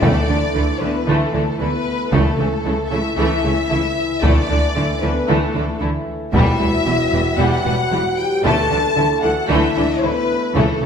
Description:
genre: cinematic, epic orchestral film score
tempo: 114 BPM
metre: 4/4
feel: straight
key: unclear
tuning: A4 = 440 Hz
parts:
  - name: warm symphonic violin section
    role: melody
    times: 0.0-10.9 s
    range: A4 to A5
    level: -23 LUFS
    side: left 4 dB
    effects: none
  - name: rich symphonic violin section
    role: second line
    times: 0.0-10.9 s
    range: G3 to E4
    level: -25 LUFS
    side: left 3 dB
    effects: none
  - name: warm symphonic viola section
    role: accompaniment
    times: 0.0-10.9 s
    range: E3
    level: -26 LUFS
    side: equal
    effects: none
  - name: dark French horn section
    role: sustained chords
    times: 0.0-10.9 s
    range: A3 to A4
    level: -24 LUFS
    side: left 3 dB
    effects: none
  - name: warm trombone section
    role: sustained chords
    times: 0.0-10.9 s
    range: E3 to A3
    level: -26 LUFS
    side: right 1 dB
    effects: none
  - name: rich symphonic cello section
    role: bass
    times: 0.0-10.9 s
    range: E2 to D3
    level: -23 LUFS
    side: right 3 dB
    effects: none
  - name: rich symphonic double bass section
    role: bass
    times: 0.0-10.9 s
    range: E1 to D2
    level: -24 LUFS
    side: right 2 dB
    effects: none
  - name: taiko ensemble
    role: drums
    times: 0.0-10.9 s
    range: none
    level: -20 LUFS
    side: equal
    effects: none
room: wet recital hall reverb, RT60 1.6 s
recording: recorded in a church or concert hall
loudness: -15 LUFS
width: side -7 dB against mid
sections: 0.0-10.9 A section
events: none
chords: 0.0 Dsus2; 2.1 A/C#; 4.2 Dsus2; 6.3 Emadd9; 8.4 Dsus2

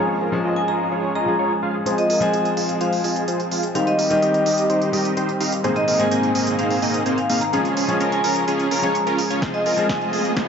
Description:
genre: EDM, festival progressive house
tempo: 127 BPM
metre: 4/4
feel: straight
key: F minor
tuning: A4 = 439 Hz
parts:
  - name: clear grand piano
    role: accompaniment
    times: 0.0-10.5 s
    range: Ab2 to Ab4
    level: -24 LUFS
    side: left 2 dB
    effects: sidechain pumping, tape echo
  - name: lush unison pad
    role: sustained chords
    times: 0.0-10.5 s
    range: Eb3 to Ab4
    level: -29 LUFS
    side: right 2 dB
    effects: none
  - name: dense compressed supersaw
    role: riff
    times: 0.0-10.5 s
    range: Bb3 to F5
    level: -23 LUFS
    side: right 1 dB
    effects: sidechain pumping, low-pass filter, tape echo
  - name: vibraphone with hard mallets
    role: melody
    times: 0.6-10.0 s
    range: Eb5 to Bb5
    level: -23 LUFS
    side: equal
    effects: tape echo
  - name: big-room dance drum kit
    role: drums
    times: 1.9-10.5 s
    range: hi-hat, snare drum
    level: -29 LUFS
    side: right 2 dB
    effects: overdrive
  - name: electronic kick drum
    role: drums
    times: 9.4-10.5 s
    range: none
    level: -29 LUFS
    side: equal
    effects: overdrive
  - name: riser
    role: sound effects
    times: 9.9-10.5 s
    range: none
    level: -29 LUFS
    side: right 3 dB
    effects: none
room: moderate huge ambient reverb, RT60 7.8 s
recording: high-pass filter, nothing above 7.6 kHz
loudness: -18 LUFS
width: side -7 dB against mid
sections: 0.0-1.9 A section; 1.9-10.5 B section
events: filter sweep on analog synth pad 0.0-1.9; build-up 1.9-10.5; filter sweep on supersaw synth 1.9-10.5; drum fill 9.4-10.5; riser 9.9-10.5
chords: 0.0 Db; 1.9 Fm; 3.8 Cm; 5.6 Abadd9; 7.5 Db; 9.4 Fm

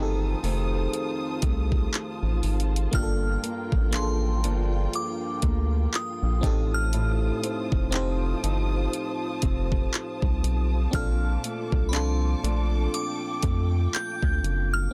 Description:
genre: contemporary R&B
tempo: 60 BPM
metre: 4/4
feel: swing 58% on 16ths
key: unclear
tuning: A4 = 440 Hz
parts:
  - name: glassy synth bell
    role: melody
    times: 0.0-14.9 s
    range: B5 to G6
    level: -36 LUFS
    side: equal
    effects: chorus, phaser, digital delay
  - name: FM electric piano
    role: accompaniment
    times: 0.0-14.9 s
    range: Bb3 to C5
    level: -35 LUFS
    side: equal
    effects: chorus
  - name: dark studio string section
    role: sustained chords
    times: 0.0-14.9 s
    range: Bb3 to Eb6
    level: -40 LUFS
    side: equal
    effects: sidechain pumping
  - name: nylon-string guitar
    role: arpeggios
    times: 0.0-14.9 s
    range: F2 to Eb4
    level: -37 LUFS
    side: equal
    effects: digital delay
  - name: rubbery square bass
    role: bass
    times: 0.0-14.9 s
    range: F1 to F2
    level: -28 LUFS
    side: equal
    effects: none
  - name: smooth R&B drum kit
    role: drums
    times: 0.4-14.7 s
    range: handclaps, hi-hat, kick drum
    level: -29 LUFS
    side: equal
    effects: none
room: little or no reverb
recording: dense, heavily limited modern master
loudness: -26 LUFS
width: mono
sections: 0.0-14.9 A section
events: none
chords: 0.0 F7; 2.9 Gm7; 6.4 F7; 10.9 Bbmaj7

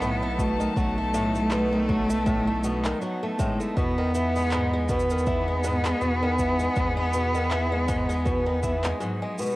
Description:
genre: folktronica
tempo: 80 BPM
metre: 4/4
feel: swing 56% on 16ths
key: unclear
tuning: A4 = 440 Hz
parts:
  - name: rich cello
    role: melody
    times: 0.0-9.6 s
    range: F#3 to B3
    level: -26 LUFS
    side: equal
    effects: cassette tape, plate reverb
  - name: rich string quartet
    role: sustained chords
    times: 0.0-9.6 s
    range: F#3 to A5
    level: -33 LUFS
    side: equal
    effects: cassette tape, plate reverb
  - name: fingerpicked twelve-string acoustic guitar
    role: arpeggios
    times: 0.0-9.6 s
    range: G#2 to A3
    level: -29 LUFS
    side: equal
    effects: cassette tape, plate reverb
  - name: warm sub bass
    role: bass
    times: 0.0-8.9 s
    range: B1 to E2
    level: -29 LUFS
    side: equal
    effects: none
  - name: electronic cabasa and handclaps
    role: drums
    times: 0.0-9.6 s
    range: none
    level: -35 LUFS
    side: equal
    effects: overdrive
  - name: electronic kick drum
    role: drums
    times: 0.4-8.8 s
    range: none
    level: -29 LUFS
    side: equal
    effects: overdrive
room: moderate small room reverb, RT60 0.5 s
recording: home recording on cassette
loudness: -22 LUFS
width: side -18 dB against mid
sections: 0.0-9.6 A section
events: break 9.0-9.6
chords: 0.0 B7; 3.8 Emaj7

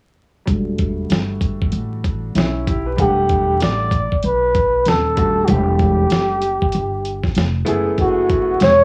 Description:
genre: hip hop, jazz-hop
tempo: 96 BPM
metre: 4/4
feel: swing 62% on 16ths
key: E minor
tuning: A4 = 440 Hz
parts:
  - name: clear upright piano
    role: accompaniment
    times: 0.5-8.7 s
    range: G3 to F#5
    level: -25 LUFS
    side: equal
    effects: low-pass filter
  - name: upright bass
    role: bass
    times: 0.5-8.8 s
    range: D#1 to B1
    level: -24 LUFS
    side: equal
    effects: none
  - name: dusty soul sampler-style drum kit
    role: drums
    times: 0.5-8.8 s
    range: hi-hat, kick drum, snare drum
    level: -23 LUFS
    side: equal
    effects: cassette tape
  - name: breathy flugelhorn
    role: melody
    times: 3.0-8.8 s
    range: F#4 to D5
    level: -19 LUFS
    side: equal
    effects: cassette tape
room: light reverb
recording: home recording on cassette, vinyl crackle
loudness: -18 LUFS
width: mono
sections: 0.5-3.0 A section; 3.0-8.8 B section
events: filter sweep on upright piano 0.5-3.0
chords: 0.5 Em11; 7.7 F#m11

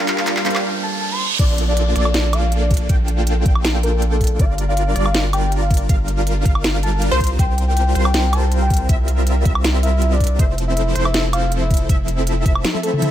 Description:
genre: future bass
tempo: 160 BPM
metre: 4/4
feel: half-time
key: Bb lydian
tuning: A4 = 437 Hz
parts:
  - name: warm grand piano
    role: accompaniment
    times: 0.0-1.2 s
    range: G3 to A5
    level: -27 LUFS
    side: right 4 dB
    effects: sidechain pumping, ping-pong delay
  - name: supersaw chords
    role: riff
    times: 0.0-13.1 s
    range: F3 to G5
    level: -23 LUFS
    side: equal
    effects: sidechain pumping
  - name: riser, reverse cymbal and downlifter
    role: sound effects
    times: 0.0-4.4 s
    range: none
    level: -26 LUFS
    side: right 4 dB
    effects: none
  - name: trap drum kit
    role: drums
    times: 0.1-13.1 s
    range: crash cymbal, handclaps, hi-hat, snare drum, toms, woodblock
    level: -23 LUFS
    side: equal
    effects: high-pass filter on snare, high-pass filter on hats, high-pass filter on perc, high-pass filter on cymbals, high-pass filter on toms
  - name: soft octave-layered synth lead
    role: melody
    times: 0.8-13.0 s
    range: A4 to C6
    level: -25 LUFS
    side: left 2 dB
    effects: chorus, tremolo, sidechain pumping, ping-pong delay
  - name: wide unison pluck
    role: arpeggios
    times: 1.4-13.1 s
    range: C5 to G5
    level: -28 LUFS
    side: right 1 dB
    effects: sidechain pumping
  - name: saturated sub bass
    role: bass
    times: 1.4-12.6 s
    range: F1 to C2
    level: -18 LUFS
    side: equal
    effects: sidechain pumping
  - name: electronic kick drum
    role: drums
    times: 1.4-12.5 s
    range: none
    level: -16 LUFS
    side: equal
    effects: none
room: digital ambience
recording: none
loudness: -15 LUFS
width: side -12 dB against mid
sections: 0.0-1.4 A section; 1.4-13.1 B section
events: build-up 0.0-1.4; drum fill 0.0-0.6, 12.6-13.1; riser 0.0-1.4; break 0.6-1.4; reverse cymbal 0.6-1.4; drop 1.4-13.1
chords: 0.0 Gm7; 1.2 N.C.; 1.4 Bbmaj7; 4.4 Gm7; 7.2 C7sus4; 10.4 Fmaj7

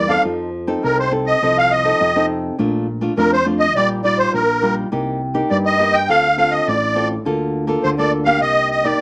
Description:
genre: samba and choro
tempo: 103 BPM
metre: 4/4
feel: straight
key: Bb major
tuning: A4 = 440 Hz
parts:
  - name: musette accordion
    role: melody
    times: 0.0-9.0 s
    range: Bb4 to G5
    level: -15 LUFS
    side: equal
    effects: none
  - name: nylon-string guitar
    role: accompaniment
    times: 0.0-9.0 s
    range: G2 to A4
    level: -20 LUFS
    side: equal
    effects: none
  - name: fingered electric bass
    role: bass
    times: 0.0-8.9 s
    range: A1 to G2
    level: -25 LUFS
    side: equal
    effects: none
room: moderate small room reverb, RT60 0.6 s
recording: small speaker sound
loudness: -14 LUFS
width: side -29 dB against mid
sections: 0.0-9.0 A section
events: none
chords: 0.3 F7; 2.6 Bbmaj7; 3.8 Ebadd9/Bb; 4.9 Cm7; 6.1 Dm7; 7.3 Bbmaj7/D; 8.4 Cm7

